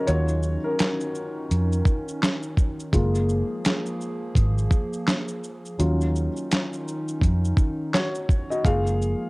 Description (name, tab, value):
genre	lo-fi hip hop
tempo	84 BPM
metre	4/4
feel	swing 59% on 16ths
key	unclear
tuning	A4 = 443 Hz
part	dark upright piano	accompaniment	0.0-9.3 s	F#3 to E#5	-28 LUFS	left 1 dB	cassette tape
part	hollow soft pad	sustained chords	0.0-9.3 s	D#3 to G#4	-33 LUFS	right 1 dB	chorus, cassette tape
part	vintage muted fingered electric bass	bass	0.1-9.1 s	F#1 to E#2	-22 LUFS	equal	none
part	dusty soul sampler-style drum kit	drums	0.1-9.2 s	handclaps, hi-hat, kick drum, shaker, snare drum	-22 LUFS	equal	cassette tape
room	little or no reverb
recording	home recording on cassette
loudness	-22 LUFS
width	side -24 dB against mid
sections	0.0-9.3 A section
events	upright piano solo 0.0-9.3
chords	0.1 D#m7; 2.9 F#maj9; 5.8 D#m7; 8.6 F#maj9